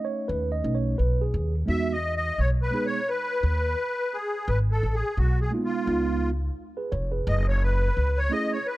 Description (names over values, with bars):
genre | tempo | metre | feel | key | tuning
hip hop | 86 BPM | 4/4 | swing 57% on 16ths | E major | A4 = 440 Hz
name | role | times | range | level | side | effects
mellow tine electric piano | accompaniment | 0.0-8.6 s | G#3 to D#5 | -29 LUFS | right 3 dB | medium stereo tremolo
upright bass | bass | 0.3-8.3 s | E#1 to E2 | -25 LUFS | equal | none
musette accordion | melody | 1.7-8.8 s | F4 to E5 | -28 LUFS | left 1 dB | none
room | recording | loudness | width
light reverb, small room ambience | dark, warm production | -23 LUFS | side -17 dB against mid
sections
0.0-1.7 A section; 1.7-8.8 A section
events
tine electric piano solo 0.0-1.7; accordion solo 1.7-8.8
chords
0.0 B7; 1.7 Emaj7; 4.5 G#m; 5.9 C#7; 7.3 F#m7